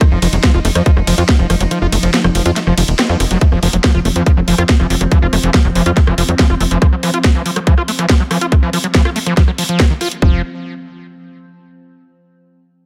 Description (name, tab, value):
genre	psychedelic trance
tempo	141 BPM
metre	4/4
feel	straight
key	unclear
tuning	A4 = 440 Hz
part	evolving wavetable pad	sustained chords	0.0-10.3 s	F3 to Eb4	-26 LUFS	equal	chorus, built-in reverb, phaser, sidechain pumping
part	screaming distorted acid line	riff	0.0-10.4 s	Eb3 to F4	-21 LUFS	equal	distortion, chorus, sidechain pumping, delay
part	drum and bass drum kit	drums	0.0-10.2 s	hi-hat, ride cymbal, rim click, snare drum	-21 LUFS	equal	overdrive
part	electronic kick drum	drums	0.0-10.3 s	none	-13 LUFS	equal	overdrive
part	tight sequencer bass	bass	0.1-6.8, 10.2-10.4 s	Eb1 to F2	-17 LUFS	equal	tube saturation
room	little or no reverb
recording	none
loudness	-13 LUFS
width	mono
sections	0.0-3.4 A section; 3.4-10.2 B section; 10.2-11.9 C section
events	drop 0.0-3.4; kick drops out 1.7-3.4; band accent 3.0; filter sweep on ambient pad 3.4-10.2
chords	0.0 F5; 10.2 N.C.